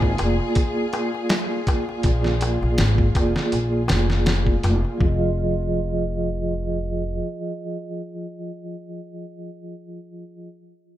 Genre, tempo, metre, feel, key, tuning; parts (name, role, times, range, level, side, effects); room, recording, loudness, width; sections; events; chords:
trip hop; 81 BPM; 4/4; swing 54% on 16ths; F dorian; A4 = 440 Hz
vibraphone with soft mallets; accompaniment; 0.0-10.5 s; F3 to Eb5; -25 LUFS; right 1 dB; tremolo, tape echo
warm studio string section; sustained chords; 0.0-5.0 s; Ab4; -34 LUFS; left 4 dB
upright bass; bass; 0.0-7.2 s; F1 to Bb1; -22 LUFS; equal
dusty soul sampler-style drum kit; drums; 0.0-5.2 s; hi-hat, kick drum, snare drum; -22 LUFS; equal
darbuka; percussion; 0.0-5.0 s; -34 LUFS; left 3 dB
bowed-like drone; texture; 0.0-5.0 s; F4; -38 LUFS; equal; built-in reverb
small room ambience; -20 LUFS; side -13 dB against mid
0.0-5.0 A section; 5.0-8.0 B section
0.0 Bb7; 5.0 Fm7